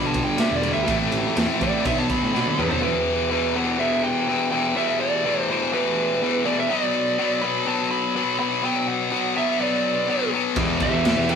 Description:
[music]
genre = quiet-loud alternative rock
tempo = 124 BPM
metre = 4/4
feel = straight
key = E minor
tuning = A4 = 441 Hz
[part]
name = fuzz lead guitar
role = melody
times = 0.0-11.4 s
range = B4 to B5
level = -25 LUFS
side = right 4 dB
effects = distortion
[part]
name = distorted electric guitar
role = riff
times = 0.0-11.4 s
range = E2 to B3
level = -22 LUFS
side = left 5 dB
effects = overdrive
[part]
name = thick fuzz guitar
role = riff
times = 0.0-2.8, 10.6-11.4 s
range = G2 to G4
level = -28 LUFS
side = right 8 dB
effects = distortion
[part]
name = fuzz picked electric bass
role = bass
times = 0.0-2.7, 10.6-11.4 s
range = E1 to B2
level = -28 LUFS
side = equal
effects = overdrive
[part]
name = raw garage drum kit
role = drums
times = 0.1-2.8, 10.6-11.4 s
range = crash cymbal, kick drum, ride cymbal, snare drum, toms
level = -28 LUFS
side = right 1 dB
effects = none
[part]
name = string machine, cellos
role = sustained chords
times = 2.8-11.4 s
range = E3 to D5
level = -38 LUFS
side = right 2 dB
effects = none
[part]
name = thick fuzz guitar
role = riff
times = 10.6-11.4 s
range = E2 to E3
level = -30 LUFS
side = equal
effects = none
[sound]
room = moderate stone room reverb, RT60 0.9 s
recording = rough rehearsal-room recording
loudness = -20 LUFS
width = side -6 dB against mid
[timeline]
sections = 0.0-2.8 A section; 2.8-11.4 B section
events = lead electric guitar solo 0.0-2.8; drum fill 2.3-2.8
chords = 0.0 G; 0.9 Am; 1.9 Bm; 2.8 Em; 6.7 Bm; 10.6 Em

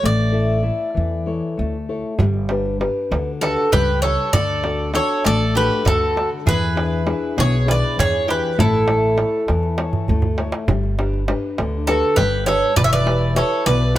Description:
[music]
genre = greek folk, Greek bouzouki band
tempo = 198 BPM (eighths)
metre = 7/8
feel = straight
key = unclear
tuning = A4 = 440 Hz
[part]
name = Greek bouzouki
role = melody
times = 0.0-14.0 s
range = A4 to E5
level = -20 LUFS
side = equal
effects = none
[part]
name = nylon-string guitar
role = accompaniment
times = 0.0-14.0 s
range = B2 to E5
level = -23 LUFS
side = left 3 dB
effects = none
[part]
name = upright bass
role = bass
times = 0.0-14.0 s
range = E1 to E2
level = -21 LUFS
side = equal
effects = none
[part]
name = darbuka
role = percussion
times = 2.2-14.0 s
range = none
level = -22 LUFS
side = right 2 dB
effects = none
[part]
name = bowl-back mandolin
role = second line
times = 3.4-13.9 s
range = E4 to C#5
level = -26 LUFS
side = right 3 dB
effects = none
[sound]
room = light reverb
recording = none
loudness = -16 LUFS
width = side -14 dB against mid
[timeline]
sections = 0.0-2.2 A section; 2.2-14.0 B section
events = speeding up 0.0-14.0; drum fill 9.9-10.7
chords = 0.0 A; 2.2 G; 4.3 D; 6.5 E7; 8.6 A; 10.7 G; 12.8 Em

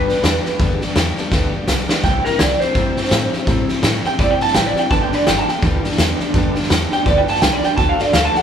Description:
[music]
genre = rockabilly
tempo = 167 BPM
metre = 4/4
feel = swing 59% on 8ths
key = G major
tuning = A4 = 441 Hz
[part]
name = electric guitar through a small old amp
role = melody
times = 0.0-8.4 s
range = Bb4 to A5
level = -18 LUFS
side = right 1 dB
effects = phaser
[part]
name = picked steel-string acoustic guitar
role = accompaniment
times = 0.0-8.4 s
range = G2 to A4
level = -23 LUFS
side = left 3 dB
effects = none
[part]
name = upright bass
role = bass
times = 0.0-8.4 s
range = G1 to A2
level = -23 LUFS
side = equal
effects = none
[part]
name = raw garage drum kit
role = drums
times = 0.1-8.4 s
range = hi-hat, kick drum, snare drum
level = -18 LUFS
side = equal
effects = none
[part]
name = electric guitar through a small old amp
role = riff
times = 4.9-8.4 s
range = G2 to A3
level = -24 LUFS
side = right 4 dB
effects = tremolo
[sound]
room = moderate large studio reverb, RT60 1.4 s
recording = band playing live in one room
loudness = -14 LUFS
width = side -8 dB against mid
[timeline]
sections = 0.0-8.4 A section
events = drum fill 1.3-2.0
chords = 0.0 G; 2.0 C; 4.9 G; 7.8 D

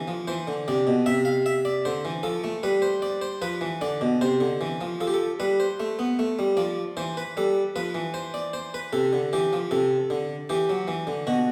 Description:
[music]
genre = classical, baroque-style two-part invention for harpsichord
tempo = 76 BPM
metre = 3/4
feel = straight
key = C major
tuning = A4 = 440 Hz
[part]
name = harpsichord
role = solo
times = 0.0-11.5 s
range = B2 to F5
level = -26 LUFS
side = equal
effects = none
[sound]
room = wet recital hall reverb, RT60 1.6 s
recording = heard from further back in the room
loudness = -26 LUFS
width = mono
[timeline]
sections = 0.3-5.0 A section; 5.0-11.5 B section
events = none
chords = 0.3 C; 1.9 Dm7; 2.6 G7; 4.2 C; 5.0 F; 6.6 Bdim/F; 7.4 Em; 8.9 Am/C; 10.5 Em

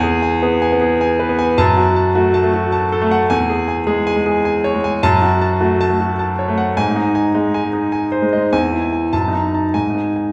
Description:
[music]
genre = classical, virtuoso piano study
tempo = 103 BPM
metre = 3/4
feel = rubato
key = unclear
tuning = A4 = 439 Hz
[part]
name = clear concert grand piano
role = solo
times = 0.0-10.3 s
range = E2 to A5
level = -16 LUFS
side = equal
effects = none
[sound]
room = wet recital hall reverb, RT60 1.5 s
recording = heard from further back in the room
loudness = -16 LUFS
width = mono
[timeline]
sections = 0.0-10.3 A section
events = none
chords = 0.0 E; 1.6 F#m; 3.3 C#m/E; 5.0 F#m; 6.8 G#; 8.5 E; 9.1 D#dim/F#; 9.7 G#5

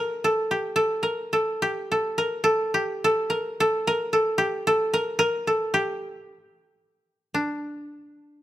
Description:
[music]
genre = japanese traditional, Japanese chamber music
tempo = 55 BPM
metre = 2/4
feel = rubato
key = unclear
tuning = A4 = 441 Hz
[part]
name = koto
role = solo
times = 0.0-8.4 s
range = D4 to Bb4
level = -22 LUFS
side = equal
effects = none
[sound]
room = light reverb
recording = close, detailed microphones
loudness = -22 LUFS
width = side -14 dB against mid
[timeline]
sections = 0.0-8.4 A section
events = none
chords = none

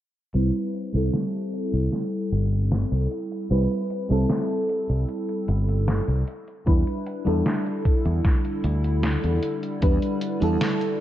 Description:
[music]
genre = vaporwave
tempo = 76 BPM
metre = 4/4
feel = straight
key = C lydian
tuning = A4 = 439 Hz
[part]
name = FM electric piano with soft pad layer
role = accompaniment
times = 0.3-11.0 s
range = G3 to B4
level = -26 LUFS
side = equal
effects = wide subtle chorus, analog delay
[part]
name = fretless electric bass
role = bass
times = 0.3-10.6 s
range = G1 to E2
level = -23 LUFS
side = equal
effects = none
[part]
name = detuned 8-bit digital drum machine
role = drums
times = 0.3-11.0 s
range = hi-hat, snare drum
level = -29 LUFS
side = equal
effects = none
[part]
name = warbly tape-like pad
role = sustained chords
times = 7.2-11.0 s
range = D3 to F#4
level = -33 LUFS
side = left 1 dB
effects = chorus, built-in reverb, phaser
[part]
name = electronic kick drum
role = drums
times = 6.7-10.0 s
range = none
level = -21 LUFS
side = equal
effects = none
[sound]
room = light reverb, digital ambience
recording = cassette tape, low-pass filter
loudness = -22 LUFS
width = side -12 dB against mid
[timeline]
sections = 0.4-11.0 A section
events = filter sweep 0.4-11.0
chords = 0.4 Cmaj7; 6.3 Em7

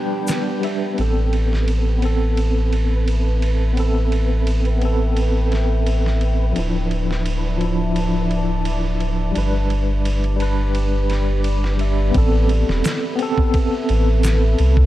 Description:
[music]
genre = trip hop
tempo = 86 BPM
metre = 4/4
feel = swing 53% on 16ths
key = A minor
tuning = A4 = 440 Hz
[part]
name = tine electric piano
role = accompaniment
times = 0.0-14.9 s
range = F3 to E5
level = -23 LUFS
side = equal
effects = medium stereo tremolo, tape echo
[part]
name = deep dark ambient pad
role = sustained chords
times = 0.0-14.9 s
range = F3 to B5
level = -28 LUFS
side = right 1 dB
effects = chorus, built-in reverb, vintage 12-bit sampler grit
[part]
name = flickering grainy texture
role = texture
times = 0.0-12.2 s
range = B4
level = -37 LUFS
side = equal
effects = none
[part]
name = dusty soul sampler-style drum kit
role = drums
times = 0.3-14.9 s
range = kick drum, ride cymbal, snare drum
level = -27 LUFS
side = equal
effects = high-pass filter on cymbals, high-pass filter on kick, high-pass filter on snare
[part]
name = tube shaker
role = percussion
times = 0.3-0.4, 12.8-14.4 s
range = none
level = -33 LUFS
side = left 2 dB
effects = none
[part]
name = warm sub bass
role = bass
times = 1.0-14.9 s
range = D1 to C2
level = -18 LUFS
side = equal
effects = none
[sound]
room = digital ambience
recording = dark, warm production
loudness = -17 LUFS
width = side -15 dB against mid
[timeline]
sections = 1.0-12.1 A section; 12.1-14.9 B section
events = break 0.0-1.0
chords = 0.0 G; 1.0 Amadd9; 6.6 Dmadd9; 9.4 G; 12.1 Amadd9

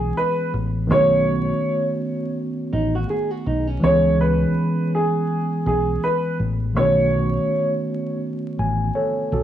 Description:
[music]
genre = lo-fi hip hop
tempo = 82 BPM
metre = 4/4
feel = swing 58% on 16ths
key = unclear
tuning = A4 = 440 Hz
[part]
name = warm upright piano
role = melody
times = 0.0-7.7 s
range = G#4 to C#5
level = -21 LUFS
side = equal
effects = low-pass filter, cassette tape, analog delay
[part]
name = mellow tine electric piano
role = accompaniment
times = 0.0-9.4 s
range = D3 to G#5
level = -23 LUFS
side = right 1 dB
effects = medium stereo tremolo, low-pass filter, cassette tape
[part]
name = deep dub fingered electric bass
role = bass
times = 0.0-9.4 s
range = A1 to C#2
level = -22 LUFS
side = equal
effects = none
[part]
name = nylon-string guitar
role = second line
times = 2.7-4.0 s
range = C#4 to G#4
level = -26 LUFS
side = right 3 dB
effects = low-pass filter, cassette tape, analog delay
[sound]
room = wet studio ambience, RT60 0.5 s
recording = home recording on cassette, vinyl crackle, studio ambience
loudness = -18 LUFS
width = side -11 dB against mid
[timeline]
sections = 0.0-9.4 A section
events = none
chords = 0.0 C#m7; 0.9 B9; 3.8 C#m7; 6.8 B9

